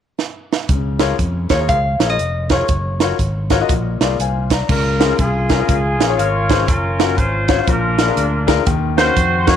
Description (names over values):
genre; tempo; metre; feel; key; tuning
uptempo gospel; 120 BPM; 4/4; swing 62% on 8ths; Db major; A4 = 436 Hz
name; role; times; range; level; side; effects
crisp fusion drum kit; drums; 0.2-9.6 s; crash cymbal, hi-hat, kick drum, snare drum; -18 LUFS; right 3 dB; none
warm upright piano; accompaniment; 0.7-9.5 s; Bb2 to Bb5; -20 LUFS; left 12 dB; none
fingered electric bass; bass; 0.7-9.6 s; F1 to F2; -20 LUFS; equal; none
nylon-string guitar; melody; 1.5-3.5 s; Db5 to F5; -20 LUFS; equal; none
mellow horn section; melody; 4.7-9.6 s; Db4 to Db5; -19 LUFS; equal; none
room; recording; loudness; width
light reverb, small room ambience; 1960s-style stereo, lossy compression artefacts; -14 LUFS; side -9 dB against mid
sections
0.7-4.7 A section; 4.7-9.6 B section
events
drum fill 0.2-0.7; upright piano fill 3.9-4.7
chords
0.0 N.C.; 0.7 Db6; 2.7 Gbmaj7; 3.7 Bb7; 4.7 Db6; 6.7 Gbmaj7; 7.7 Bb7; 8.7 Ebm7